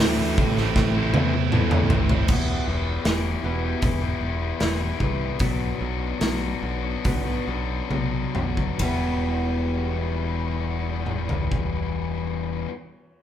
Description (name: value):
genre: quiet-loud alternative rock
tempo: 66-79 BPM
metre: 4/4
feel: straight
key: E minor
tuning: A4 = 439 Hz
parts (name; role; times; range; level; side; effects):
- electric guitar through a small old amp; melody; 0.0-1.5 s; none; barely audible; none; none
- fuzz guitar; riff; 0.0-12.7 s; A2 to G4; -28 LUFS; left 7 dB; distortion
- thick fuzz guitar; riff; 0.0-2.3 s; A2 to E4; -26 LUFS; right 7 dB; distortion
- modern bright picked electric bass; bass; 0.0-12.6 s; E1 to E2; -27 LUFS; equal; none
- big rock drum kit; drums; 0.0-11.7 s; crash cymbal, hi-hat, kick drum, ride cymbal, snare drum, toms; -25 LUFS; equal; none
- fingerpicked steel-string acoustic guitar; arpeggios; 2.3-12.7 s; E2 to G4; -33 LUFS; right 3 dB; none
room: moderate large studio reverb, RT60 1.0 s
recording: band playing live in one room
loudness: -22 LUFS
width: side -10 dB against mid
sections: 0.0-2.3 A section; 2.3-8.8 B section; 8.8-12.4 C section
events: drum fill 0.8-2.3, 7.9-8.8; slowing down 2.3-8.8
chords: 0.0 Am; 2.3 Em; 5.4 Bm; 8.8 Em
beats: 0.00 0.76 1.52 | 2.28 3.05 3.82 4.60 | 5.40 6.22 7.05 7.91 | 8.80 9.70 10.61 11.51